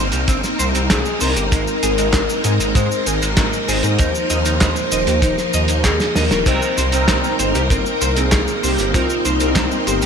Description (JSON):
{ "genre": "synthwave", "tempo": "97 BPM", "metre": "4/4", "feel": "straight", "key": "C minor", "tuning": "A4 = 440 Hz", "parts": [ { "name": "string machine, full ensemble", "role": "sustained chords", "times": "0.0-10.1 s", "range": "F3 to C5", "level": "-21 LUFS", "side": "equal", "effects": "ensemble chorus" }, { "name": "clean electric guitar", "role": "riff", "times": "0.0-10.1 s", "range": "Ab3 to Eb5", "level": "-27 LUFS", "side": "right 2 dB", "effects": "ensemble chorus, ping-pong delay" }, { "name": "wide detuned saw bass", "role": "bass", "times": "0.0-10.1 s", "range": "Eb1 to Ab2", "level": "-21 LUFS", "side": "equal", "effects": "chorus, tube saturation" }, { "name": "cloth-damped thuddy drum kit", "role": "drums", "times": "0.1-10.1 s", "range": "cabasa, crash cymbal, handclaps, hi-hat, snare drum", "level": "-21 LUFS", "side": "right 1 dB", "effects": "gated reverb" }, { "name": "kick drum", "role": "drums", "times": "0.3-9.7 s", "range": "none", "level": "-19 LUFS", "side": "equal", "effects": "none" }, { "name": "soft octave-layered synth lead", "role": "melody", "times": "0.9-10.1 s", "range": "Eb4 to C5", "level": "-23 LUFS", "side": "left 2 dB", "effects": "chorus, phaser, cassette tape, ping-pong delay" }, { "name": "mellow synth brass", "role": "stabs", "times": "6.5-10.1 s", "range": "C4 to C5", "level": "-24 LUFS", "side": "right 2 dB", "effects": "chorus, phaser, digital delay" } ], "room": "moderate lush hall reverb, RT60 1.8 s, studio ambience", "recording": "bright 1980s-style digital production", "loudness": "-15 LUFS", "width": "side -6 dB against mid", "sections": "0.0-10.1 A section", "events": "drum fill 5.8-6.5", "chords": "0.0 Cm7; 1.5 Abadd9; 4.0 Ebsus2; 6.5 Cm7" }